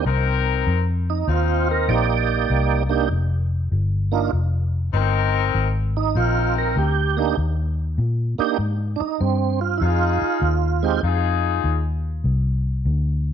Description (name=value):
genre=electric blues shuffle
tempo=98 BPM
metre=4/4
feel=swing 67% on 8ths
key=C minor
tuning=A4 = 440 Hz
part: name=tonewheel organ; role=accompaniment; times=0.0-11.0 s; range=Ab3 to D5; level=-22 LUFS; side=right 11 dB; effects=slow rotary speaker, overdrive, chorus vibrato
part: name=vintage muted fingered electric bass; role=bass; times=0.0-13.3 s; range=F1 to Bb2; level=-21 LUFS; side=left 1 dB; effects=none
part: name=warm horn section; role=stabs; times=0.1-11.8 s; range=C4 to C5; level=-24 LUFS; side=left 12 dB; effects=none
room=light reverb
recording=1960s-style stereo with parts hard left and right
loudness=-19 LUFS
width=side -8 dB against mid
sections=0.1-13.3 A section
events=none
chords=0.1 Cm7; 9.8 Fm7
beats=| 0.06 0.67 1.28 1.89 | 2.50 3.11 3.72 4.33 | 4.94 5.55 6.16 6.77 | 7.38 7.99 8.60 9.21 | 9.81 10.42 11.03 11.64 | 12.24 12.85